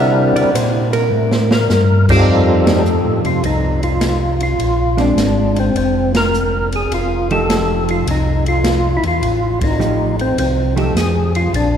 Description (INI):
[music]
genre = soul jazz organ trio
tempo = 104 BPM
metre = 4/4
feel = swing 67% on 8ths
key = F mixolydian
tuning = A4 = 438 Hz
[part]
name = percussive tonewheel organ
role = melody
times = 0.0-11.8 s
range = G3 to Bb4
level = -17 LUFS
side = left 1 dB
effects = slow rotary speaker, chorus vibrato
[part]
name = hollow-body jazz guitar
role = accompaniment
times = 0.0-10.9 s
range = F3 to E5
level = -22 LUFS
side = right 2 dB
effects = none
[part]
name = mellow tonewheel organ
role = bass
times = 0.0-11.8 s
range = F1 to C3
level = -17 LUFS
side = equal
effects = slow rotary speaker
[part]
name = open jazz drum kit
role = drums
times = 0.4-11.7 s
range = crash cymbal, hi-hat, kick drum, ride cymbal, snare drum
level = -22 LUFS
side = equal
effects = none
[sound]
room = wet cathedral reverb, RT60 4.9 s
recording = recorded in a church or concert hall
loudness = -13 LUFS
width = side -8 dB against mid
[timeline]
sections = 0.0-2.3 A section; 2.3-11.8 B section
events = hollow-body jazz guitar solo 0.0-2.3; drum fill 1.1-1.7; band accent 2.6, 6.0, 9.5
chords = 0.0 C9; 2.3 F9; 4.6 Bb9; 6.9 F9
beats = 0.55 1.13 1.71 | 2.28 2.86 3.44 4.02 | 4.59 5.17 5.75 6.33 | 6.91 7.49 8.06 8.64 | 9.22 9.80 10.38 10.96 | 11.54